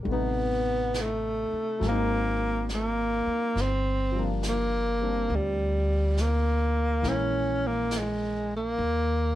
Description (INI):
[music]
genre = jazz ballad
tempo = 69 BPM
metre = 4/4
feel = swing 66% on 8ths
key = unclear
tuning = A4 = 440 Hz
[part]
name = warm baby grand piano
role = accompaniment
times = 0.0-8.8 s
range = C3 to F4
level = -34 LUFS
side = left 3 dB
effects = none
[part]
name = upright bass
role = bass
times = 0.0-9.4 s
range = G1 to Eb2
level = -29 LUFS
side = equal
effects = none
[part]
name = breathy tenor saxophone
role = melody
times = 0.1-9.4 s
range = G3 to Db4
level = -27 LUFS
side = equal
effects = none
[part]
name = vintage brush drum kit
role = drums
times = 0.1-9.4 s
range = brushed snare drum, hi-hat, snare drum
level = -40 LUFS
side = right 1 dB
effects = none
[sound]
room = light reverb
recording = dark, warm production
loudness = -25 LUFS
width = side -14 dB against mid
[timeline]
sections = 0.0-9.4 A section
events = none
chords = 0.1 Am7b5; 1.8 Ab9; 3.6 Gm7; 7.0 Bbm7b5; 8.8 Eb5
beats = | 0.06 0.94 1.81 2.68 | 3.56 4.43 5.30 6.17 | 7.04 7.91 8.79